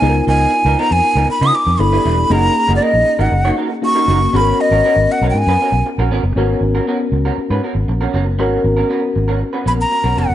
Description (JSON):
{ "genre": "pop", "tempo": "118 BPM", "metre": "4/4", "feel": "straight", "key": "G# dorian", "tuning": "A4 = 438 Hz", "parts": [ { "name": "breathy jazz flute", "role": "melody", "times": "0.0-5.9, 9.7-10.3 s", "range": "D5 to D#6", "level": "-15 LUFS", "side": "equal", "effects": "none" }, { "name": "tine electric piano", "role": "accompaniment", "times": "0.0-10.3 s", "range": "A#3 to A#4", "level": "-20 LUFS", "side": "left 2 dB", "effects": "lush chorus" }, { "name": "electric guitar through a small old amp", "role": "riff", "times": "0.0-10.3 s", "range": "E#3 to C#5", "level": "-22 LUFS", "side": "right 5 dB", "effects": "lush chorus" }, { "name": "vintage muted fingered electric bass", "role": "bass", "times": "0.0-10.3 s", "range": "E1 to C#3", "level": "-16 LUFS", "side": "equal", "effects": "none" } ], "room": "light reverb", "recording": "nothing above 10.6 kHz", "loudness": "-13 LUFS", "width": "side -12 dB against mid", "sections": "0.0-6.4 A section; 6.4-10.3 B section", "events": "none", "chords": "0.0 C#13; 1.8 G6; 2.3 F#6; 4.3 G#m11" }